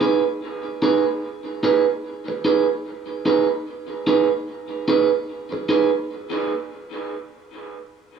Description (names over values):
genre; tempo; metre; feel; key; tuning
reggae; 74 BPM; 4/4; swing 59% on 16ths; G# minor; A4 = 439 Hz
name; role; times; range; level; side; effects
electric guitar at the edge of break-up; accompaniment; 0.0-5.9 s; D#4 to B4; -20 LUFS; right 4 dB; dub echo
room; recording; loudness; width
wet echo chamber reverb, RT60 1.8 s, digital ambience; small room ambience; -19 LUFS; side -6 dB against mid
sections
0.0-6.1 A section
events
none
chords
0.0 G#m